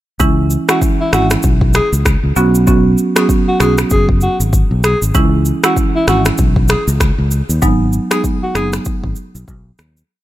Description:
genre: afrobeats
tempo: 97 BPM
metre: 4/4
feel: swing 58% on 16ths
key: C# minor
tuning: A4 = 440 Hz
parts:
  - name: marimba with medium mallets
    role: accompaniment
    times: 0.2-8.7 s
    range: E3 to F#4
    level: -16 LUFS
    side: right 3 dB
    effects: none
  - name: fingered electric bass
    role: bass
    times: 0.2-10.0 s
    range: F#1 to D#2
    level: -15 LUFS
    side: equal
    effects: none
  - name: afro-pop drum kit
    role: drums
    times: 0.2-10.1 s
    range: finger snaps, kick drum, rim click, shaker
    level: -16 LUFS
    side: equal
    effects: overdrive
  - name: warm alto saxophone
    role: melody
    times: 0.7-8.7 s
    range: E4 to G#4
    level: -19 LUFS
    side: left 1 dB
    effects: ping-pong delay
room: small room ambience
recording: none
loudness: -11 LUFS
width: side -14 dB against mid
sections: 0.2-10.1 verse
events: fade-out 7.6-10.1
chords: 0.2 C#m; 2.4 Bsus2; 5.1 C#m; 7.6 G#m7

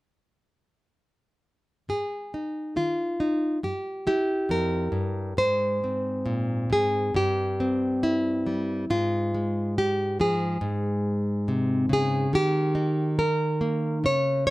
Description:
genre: folk, solo fingerstyle acoustic guitar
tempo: 70 BPM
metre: 4/4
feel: rubato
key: Ab major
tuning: A4 = 435 Hz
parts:
  - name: nylon-string guitar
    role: solo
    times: 1.9-14.5 s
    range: F2 to Db5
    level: -23 LUFS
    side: equal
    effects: none
room: light reverb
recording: close, detailed microphones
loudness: -23 LUFS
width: side -19 dB against mid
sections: 1.9-5.4 A section; 5.4-14.5 B section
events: none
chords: 1.9 Ab5; 3.6 Edim; 5.4 Ab; 7.1 C/G; 8.9 Fm/Ab; 10.6 Ab; 12.3 Eb

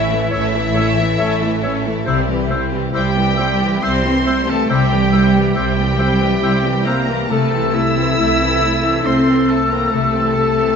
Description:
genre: cinematic, emotional film score for orchestra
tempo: 69 BPM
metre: 3/4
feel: rubato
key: unclear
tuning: A4 = 442 Hz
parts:
  - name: rich symphonic violin section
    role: melody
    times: 0.0-10.8 s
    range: E5 to E6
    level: -23 LUFS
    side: left 3 dB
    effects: none
  - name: clear clarinet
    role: second line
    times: 0.0-10.8 s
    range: A4 to C#5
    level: -26 LUFS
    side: left 1 dB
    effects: none
  - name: clear oboe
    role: second line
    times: 0.0-10.8 s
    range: E4 to E5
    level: -26 LUFS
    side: right 2 dB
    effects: none
  - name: clear symphonic violin section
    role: second line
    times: 0.0-10.8 s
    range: A3 to A4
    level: -27 LUFS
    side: left 2 dB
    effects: none
  - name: rich symphonic viola section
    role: accompaniment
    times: 0.0-10.8 s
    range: E3 to C#4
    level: -24 LUFS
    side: right 1 dB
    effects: none
  - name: dark French horn section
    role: sustained chords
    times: 0.0-10.8 s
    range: E3 to E4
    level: -21 LUFS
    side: left 2 dB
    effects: none
  - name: concert harp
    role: arpeggios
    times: 0.0-10.8 s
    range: A2 to A5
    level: -24 LUFS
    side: left 7 dB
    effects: none
  - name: rich studio double bass section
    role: bass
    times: 0.0-10.7 s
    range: A1 to C2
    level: -22 LUFS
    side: right 3 dB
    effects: none
  - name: warm symphonic cello section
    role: bass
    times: 0.0-10.8 s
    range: E3 to E4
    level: -21 LUFS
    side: right 4 dB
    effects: none
  - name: mellow hollow concert flute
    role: second line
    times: 0.3-10.8 s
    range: E6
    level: -25 LUFS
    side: left 2 dB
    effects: none
room: wet scoring stage reverb, RT60 2.1 s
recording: nothing above 7.7 kHz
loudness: -14 LUFS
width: side -6 dB against mid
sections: 0.0-10.8 A section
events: none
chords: 0.0 A; 2.1 C; 7.3 Am/C

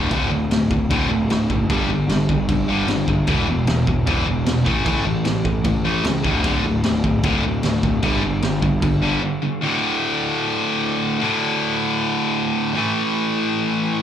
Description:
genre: punk rock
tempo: 152 BPM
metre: 4/4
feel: straight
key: unclear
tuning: A4 = 441 Hz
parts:
  - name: distorted electric guitar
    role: riff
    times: 0.0-14.0 s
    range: D2 to A3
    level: -20 LUFS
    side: equal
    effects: overdrive
  - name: fuzz picked electric bass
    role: bass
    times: 0.0-9.2 s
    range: D1 to C#2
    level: -22 LUFS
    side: equal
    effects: overdrive
  - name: raw garage drum kit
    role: drums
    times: 0.1-8.9 s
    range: crash cymbal, kick drum, snare drum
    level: -24 LUFS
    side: equal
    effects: none
room: light reverb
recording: live gig heard through the venue's PA, club reverb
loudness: -17 LUFS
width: side -9 dB against mid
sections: 0.0-9.6 A section; 9.6-14.0 B section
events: break 9.2-9.6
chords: 0.0 D5; 1.7 G5; 3.3 E5; 4.7 A5; 6.3 D5; 8.0 G5; 9.6 D5; 12.8 A5

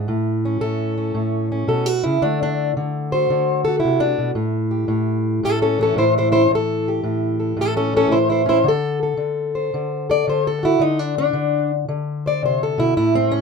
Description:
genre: acoustic country blues, solo or duo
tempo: 112 BPM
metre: 4/4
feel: swing 66% on 8ths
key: unclear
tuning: A4 = 440 Hz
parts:
  - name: fingerpicked plugged-in steel-string acoustic guitar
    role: solo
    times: 0.0-13.4 s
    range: A2 to D5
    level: -17 LUFS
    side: left 1 dB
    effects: none
room: moderate booth ambience, RT60 0.2 s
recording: minimal, uncompressed stereo recording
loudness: -17 LUFS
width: side -5 dB against mid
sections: 0.1-13.4 A section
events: steel-string acoustic guitar solo 0.1-13.4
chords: 0.1 A; 2.2 D7; 4.4 A7; 8.7 D7(no3)

